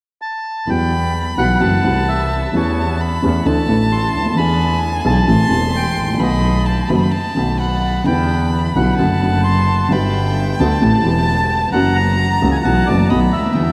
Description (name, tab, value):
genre	tango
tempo	131 BPM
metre	4/4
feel	rubato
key	E minor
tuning	A4 = 441 Hz
part	bandoneon	melody	0.2-13.7 s	C#5 to C6	-24 LUFS	equal	none
part	warm violin	second line	0.7-13.7 s	F#5 to C6	-26 LUFS	equal	none
part	dark upright piano	accompaniment	0.7-13.7 s	E1 to A4	-20 LUFS	equal	none
part	clear double bass	bass	0.7-13.7 s	E1 to E2	-21 LUFS	equal	none
room	wet huge ambient reverb, RT60 7.4 s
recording	in a vast, echoing space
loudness	-16 LUFS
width	mono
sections	0.7-13.7 A section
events	none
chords	0.0 N.C.; 0.7 Emadd9; 1.6 F#m7b5; 2.5 A7/E; 3.5 Dsus2; 4.4 E7; 5.3 Am7; 6.2 B7; 8.1 Em7; 9.0 D/F#; 9.9 Gmaj7; 10.8 Am7; 11.7 F#7; 12.6 B7sus4; 13.1 B7